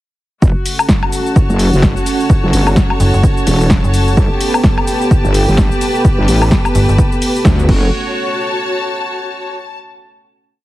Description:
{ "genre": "bass house", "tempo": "128 BPM", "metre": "4/4", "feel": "swing 58% on 16ths", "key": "F# phrygian", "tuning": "A4 = 440 Hz", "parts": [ { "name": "dark analog pad", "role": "sustained chords", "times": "0.4-7.9 s", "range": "B3 to G5", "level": "-20 LUFS", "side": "right 2 dB", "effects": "chorus, sidechain pumping" }, { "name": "wobble bass", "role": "bass", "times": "0.4-7.9 s", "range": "E1 to D2", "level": "-13 LUFS", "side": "equal", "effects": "chorus, overdrive, sidechain pumping" }, { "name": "electronic kick drum", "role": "drums", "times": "0.4-7.8 s", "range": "none", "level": "-13 LUFS", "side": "equal", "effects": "none" }, { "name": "house drum kit", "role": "drums", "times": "0.4-7.8 s", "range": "crash cymbal, hi-hat, shaker, snare drum, woodblock", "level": "-18 LUFS", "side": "left 1 dB", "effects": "none" }, { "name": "clear symphonic string section", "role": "texture", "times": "0.4-9.8 s", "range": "F#4 to A5", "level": "-20 LUFS", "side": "left 2 dB", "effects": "sidechain pumping" }, { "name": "metallic FM bass", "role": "bass", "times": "3.0-7.0 s", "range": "F#1 to G1", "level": "-11 LUFS", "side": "equal", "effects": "overdrive, sidechain pumping" } ], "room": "light reverb", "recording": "heavily compressed radio sound, multiband compression", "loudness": "-10 LUFS", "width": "side -16 dB against mid", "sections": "0.4-7.9 drop; 7.9-9.8 final note", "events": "drop 0.4-7.9; band accent 7.5", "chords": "0.4 F#m; 4.2 Gadd9; 7.7 F#m" }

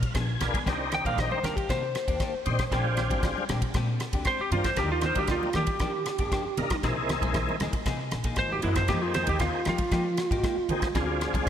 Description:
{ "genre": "electric jazz fusion", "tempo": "117 BPM", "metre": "4/4", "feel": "straight", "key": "C minor", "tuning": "A4 = 441 Hz", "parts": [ { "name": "lightly driven lead guitar", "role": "melody", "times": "0.0-11.2 s", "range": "E4 to G5", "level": "-29 LUFS", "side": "right 2 dB", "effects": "wide subtle chorus" }, { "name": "tonewheel organ", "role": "accompaniment", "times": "0.0-11.5 s", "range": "Ab3 to Ab5", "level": "-32 LUFS", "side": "left 1 dB", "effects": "slow rotary speaker, chorus vibrato" }, { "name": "damped 70s drum kit", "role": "drums", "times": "0.0-11.5 s", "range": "kick drum, ride cymbal, rim click", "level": "-31 LUFS", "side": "equal", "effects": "gated reverb" }, { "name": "clean electric guitar", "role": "stabs", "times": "0.1-11.5 s", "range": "Eb3 to Ab4", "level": "-36 LUFS", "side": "left 4 dB", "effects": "ensemble chorus, ping-pong delay" }, { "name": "upright bass", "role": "bass", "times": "0.1-11.5 s", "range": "F#1 to F3", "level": "-31 LUFS", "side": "equal", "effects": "none" }, { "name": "congas", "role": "percussion", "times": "0.4-11.5 s", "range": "none", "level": "-37 LUFS", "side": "right 1 dB", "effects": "none" } ], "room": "moderate lush hall reverb, RT60 2.2 s", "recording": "bright 1980s-style digital production", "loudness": "-25 LUFS", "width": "side -9 dB against mid", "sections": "0.7-11.5 A section", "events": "tonewheel organ fill 0.0-0.7; lead electric guitar solo 0.7-11.5; drum fill 8.5-8.9", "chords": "0.0 Bb7b9; 0.7 Cm9; 2.7 Bb13; 4.8 Ebmaj9; 6.8 C7alt; 8.9 Fm11; 11.0 Dm7b5" }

